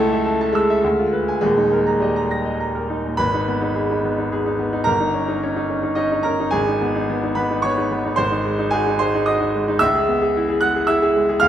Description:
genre	classical, virtuoso piano study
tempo	99-114 BPM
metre	3/4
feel	rubato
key	G# minor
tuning	A4 = 439 Hz
part	clear grand piano	solo	0.0-11.5 s	D#1 to A#6	-17 LUFS	equal	none
room	wet recital hall reverb, RT60 1.3 s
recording	none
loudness	-17 LUFS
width	side -10 dB against mid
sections	0.0-3.2 A section; 3.2-11.5 B section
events	none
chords	0.0 A/C#; 0.8 Ddim7; 1.4 D#; 3.2 G#m; 4.9 D#7/G; 6.5 G#m; 8.2 G#7; 9.8 C#m7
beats	0.27 0.83 | 1.42 2.01 2.60 | 3.20 3.77 4.32 | 4.87 5.43 5.98 | 6.54 7.09 7.63 | 8.18 8.73 9.28 | 9.82 10.36 10.89 | 11.42

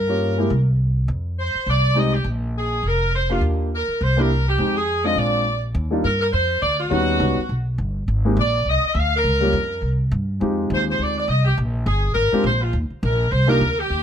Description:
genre	jazz, big band swing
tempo	206 BPM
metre	4/4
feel	swing 59% on 8ths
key	Eb major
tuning	A4 = 439 Hz
part	clear saxophone section	melody	0.0-14.0 s	F4 to F5	-21 LUFS	equal	none
part	upright bass	bass	0.0-14.0 s	F1 to G2	-21 LUFS	equal	none
part	warm grand piano	accompaniment	0.1-13.6 s	G3 to G4	-23 LUFS	left 1 dB	none
room	little or no reverb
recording	close, detailed microphones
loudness	-18 LUFS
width	side -9 dB against mid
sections	0.0-5.7 A section; 5.7-14.0 A section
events	none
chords	0.0 Gm7b5; 0.5 N.C.; 1.1 Fm9; 2.3 Bb5; 3.4 Ebmaj9; 4.0 C7; 4.6 Fm7; 5.2 Bb9; 5.7 Ebmaj9; 6.9 Eb7alt; 8.1 Abadd9; 9.2 Gm7b5; 9.8 C5; 10.4 Fm9; 11.6 Bb7(no3); 12.7 Ebmaj7(no3)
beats	0.21 0.50 0.79 | 1.08 1.38 1.67 1.96 | 2.25 2.54 2.83 3.12 | 3.42 3.71 4.00 4.29 | 4.58 4.88 5.17 5.46 | 5.75 6.04 6.33 6.62 | 6.92 7.21 7.50 7.79 | 8.08 8.37 8.66 8.95 | 9.24 9.54 9.83 10.12 | 10.41 10.70 10.99 11.28 | 11.57 11.86 12.15 12.45 | 12.74 13.03 13.32 13.61 | 13.90

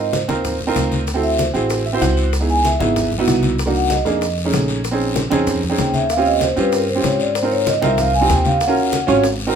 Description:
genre	Afro-Cuban jazz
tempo	191 BPM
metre	4/4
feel	straight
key	Ab major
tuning	A4 = 440 Hz
part	vibraphone with medium mallets	melody	0.0-9.2 s	Bb4 to Ab5	-19 LUFS	equal	none
part	warm upright piano	accompaniment	0.0-9.6 s	A3 to F#5	-19 LUFS	right 4 dB	none
part	upright bass	bass	0.0-9.5 s	Ab1 to Ab2	-22 LUFS	equal	none
part	bongos	percussion	0.1-9.6 s	none	-28 LUFS	left 9 dB	none
part	congas	percussion	0.1-9.6 s	none	-26 LUFS	left 2 dB	none
part	guiro	percussion	0.1-9.6 s	none	-30 LUFS	left 6 dB	none
part	maracas	percussion	0.1-9.6 s	none	-32 LUFS	right 3 dB	none
room	light reverb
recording	minimal, uncompressed stereo recording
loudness	-15 LUFS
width	side -7 dB against mid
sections	0.0-9.6 A section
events	vibraphone solo 0.0-9.6; upright piano fill 1.7-2.3, 9.4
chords	0.0 Ab6; 1.1 D9; 2.3 Dbm9; 3.6 Cm7b5; 4.2 F7alt; 4.8 Bbm11; 6.1 Eb13; 7.4 Ab6; 8.6 Ebm7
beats	0.13 0.44 0.76 | 1.07 1.39 1.70 2.02 | 2.33 2.65 2.96 3.27 | 3.59 3.90 4.21 4.53 | 4.84 5.16 5.47 5.78 | 6.10 6.41 6.72 7.04 | 7.35 7.67 7.98 8.29 | 8.61 8.92 9.24 9.55

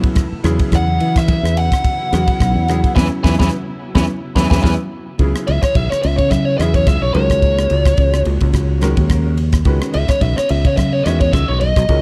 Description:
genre	electric jazz fusion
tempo	108 BPM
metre	4/4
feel	swing 55% on 16ths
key	C# dorian from 5.2 s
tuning	A4 = 440 Hz
part	bright grand piano	accompaniment	0.0-12.0 s	C#3 to C#5	-26 LUFS	equal	none
part	rich studio string section	sustained chords	0.0-12.0 s	B2 to D#5	-32 LUFS	equal	none
part	crisp fusion drum kit	drums	0.0-12.0 s	kick drum, ride cymbal, rim click, snare drum	-20 LUFS	equal	none
part	congas	percussion	0.2-12.0 s	none	-27 LUFS	equal	none
part	fingered electric bass	bass	0.3-12.0 s	B1 to E3	-19 LUFS	equal	none
part	biting lead guitar	melody	0.8-12.0 s	C#5 to B5	-22 LUFS	equal	overdrive
room	little or no reverb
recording	dark, warm production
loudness	-16 LUFS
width	mono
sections	0.0-5.2 A section; 5.2-12.0 B section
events	band accent 3.0-5.2; grand piano fill 4.1-5.2; drum fill 4.6-5.2; lead electric guitar solo 5.2-12.0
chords	0.4 E69; 7.1 G#9sus4/C#; 9.7 C#m9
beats	0.17 | 0.73 1.28 1.84 2.40 | 2.96 3.52 4.08 4.63 | 5.19 5.75 6.31 6.87 | 7.42 7.98 8.54 9.10 | 9.66 10.21 10.77 11.33 | 11.89

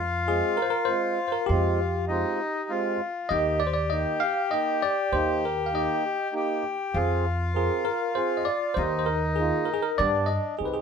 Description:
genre	klezmer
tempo	99 BPM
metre	3/4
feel	straight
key	Eb major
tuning	A4 = 440 Hz
part	accordion	second line	0.0-10.6 s	D4 to G4	-29 LUFS	left 4 dB	none
part	upright bass	bass	0.0-10.8 s	C2 to G2	-29 LUFS	equal	none
part	bell-like tine electric piano	melody	0.3-10.8 s	G4 to F5	-27 LUFS	left 1 dB	fast stereo tremolo
part	mellow accordion	accompaniment	0.3-10.8 s	Ab3 to Bb4	-30 LUFS	right 5 dB	none
room	moderate studio reverb, RT60 0.5 s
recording	minimal, uncompressed stereo recording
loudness	-23 LUFS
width	side -6 dB against mid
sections	0.0-10.6 A section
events	none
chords	0.0 Fm; 3.3 Eb; 7.0 Fm; 8.8 Eb; 10.0 G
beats	0.28 0.89 | 1.50 2.10 2.71 | 3.31 3.92 4.53 | 5.13 5.74 6.35 | 6.96 7.56 8.17 | 8.78 9.38 9.99 | 10.60

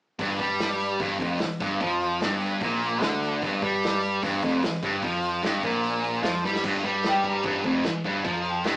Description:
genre	garage rock duo or trio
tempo	149 BPM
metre	4/4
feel	straight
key	unclear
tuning	A4 = 440 Hz
part	thick fuzz guitar	riff	0.2-8.8 s	F2 to G3	-24 LUFS	equal	distortion
part	growling picked electric bass	bass	0.2-8.8 s	F1 to G2	-32 LUFS	equal	overdrive
part	vintage drum kit	drums	0.2-8.7 s	crash cymbal, hi-hat, kick drum, snare drum	-31 LUFS	equal	none
part	clean lap steel guitar	melody	7.1-8.8 s	G5 to Bb5	-28 LUFS	left 1 dB	none
room	moderate studio ambience, RT60 0.5 s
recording	rough rehearsal-room recording, warm saturation, small speaker sound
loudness	-23 LUFS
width	side -21 dB against mid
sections	0.2-6.6 A section; 6.6-8.8 B section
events	drum fill 6.4; electric slide guitar solo 6.6-8.8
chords	0.2 G5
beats	| 0.20 0.60 1.00 1.41 | 1.81 2.21 2.62 3.02 | 3.42 3.83 4.23 4.63 | 5.03 5.43 5.84 6.24 | 6.64 7.04 7.44 7.84 | 8.24 8.64

